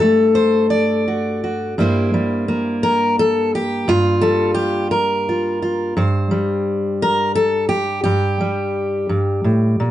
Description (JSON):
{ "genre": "folk, solo fingerstyle acoustic guitar", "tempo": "57 BPM (dotted quarters)", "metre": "6/8", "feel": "straight", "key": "unclear", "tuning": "A4 = 441 Hz", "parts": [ { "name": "fingerpicked steel-string acoustic guitar", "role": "solo", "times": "0.0-9.9 s", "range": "G2 to D5", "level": "-16 LUFS", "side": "equal", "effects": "none" } ], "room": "moderate studio reverb, RT60 0.6 s", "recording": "nothing above 10.3 kHz", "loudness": "-16 LUFS", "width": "side -13 dB against mid", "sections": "0.0-9.9 A section", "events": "none", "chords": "0.0 D/G; 1.8 C7/G; 3.9 Gm7; 6.0 C5/G; 8.1 N.C.", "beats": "0.71 | 1.77 2.83 | 3.88 4.92 | 5.97 7.01 | 8.05 9.10" }